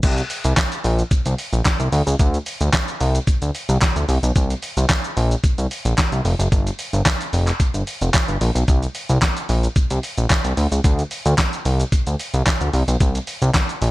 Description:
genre	dance-pop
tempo	111 BPM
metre	4/4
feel	straight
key	unclear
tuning	A4 = 440 Hz
part	fat analog bass	bass	0.0-13.9 s	F1 to D2	-18 LUFS	equal	sidechain pumping
part	dusty soul sampler-style drum kit	drums	0.0-13.9 s	crash cymbal, handclaps, hi-hat, kick drum, shaker, snare drum	-20 LUFS	equal	none
room	little or no reverb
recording	none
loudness	-17 LUFS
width	side -19 dB against mid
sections	0.0-13.9 A section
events	drop 0.0-13.9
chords	none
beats	| 0.03 0.57 1.11 1.65 | 2.19 2.73 3.27 3.82 | 4.36 4.90 5.44 5.98 | 6.52 7.06 7.60 8.14 | 8.68 9.22 9.76 10.30 | 10.84 11.38 11.92 12.46 | 13.01 13.55

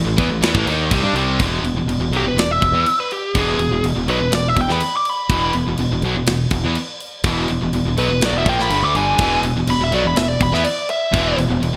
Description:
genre	hard rock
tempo	123 BPM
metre	4/4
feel	straight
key	unclear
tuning	A4 = 440 Hz
part	distorted electric guitar	riff	0.0-11.7 s	E2 to D#4	-27 LUFS	equal	distortion
part	distorted electric guitar	riff	0.0-11.8 s	E2 to D#4	-25 LUFS	equal	overdrive
part	distorted electric guitar	riff	0.0-1.4, 9.2-11.8 s	E2 to D#4	-28 LUFS	equal	overdrive
part	modern bright fingered electric bass	bass	0.0-11.8 s	E1 to G2	-25 LUFS	equal	none
part	tight metal drum kit	drums	0.2-11.7 s	crash cymbal, kick drum, snare drum	-26 LUFS	equal	none
part	biting lead guitar	melody	2.2-11.4 s	G4 to D6	-22 LUFS	equal	overdrive
room	moderate plate reverb, RT60 1.0 s, small room ambience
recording	bright 1980s-style digital production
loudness	-18 LUFS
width	mono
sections	0.0-1.4 A section; 1.4-11.8 B section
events	lead electric guitar solo 1.4-11.8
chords	0.0 A5; 1.4 E5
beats	0.43 0.91 | 1.40 1.89 2.37 2.86 | 3.35 3.84 4.32 4.81 | 5.30 5.79 6.28 6.76 | 7.25 7.74 8.22 8.71 | 9.20 9.68 10.17 10.65 | 11.14 11.62

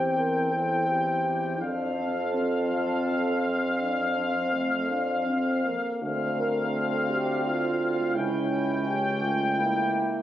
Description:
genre	classical, hymn-like piece for brass band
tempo	55 BPM (dotted quarters)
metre	12/8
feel	rubato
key	F major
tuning	A4 = 441 Hz
part	clear trumpet section	melody	0.0-10.2 s	F5 to G5	-28 LUFS	left 2 dB	none
part	dark French horn section	second line	0.0-10.2 s	E4 to Bb4	-31 LUFS	right 4 dB	none
part	clear trombone	accompaniment	0.0-10.2 s	Bb3 to C#4	-34 LUFS	right 2 dB	none
part	warm euphonium	accompaniment	0.0-10.0 s	A3 to F4	-34 LUFS	left 1 dB	none
part	clear tuba	bass	0.0-10.2 s	C#2 to F2	-30 LUFS	equal	none
room	moderate concert hall reverb, RT60 1.8 s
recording	recorded on a phone in the room, club reverb, compression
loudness	-24 LUFS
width	side -12 dB against mid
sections	0.0-10.2 A section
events	none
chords	0.0 C/E; 1.6 F; 6.0 Dm7; 8.1 A7/C#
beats	0.52 | 1.61 2.71 3.81 4.90 | 6.02 7.09 8.15 9.21

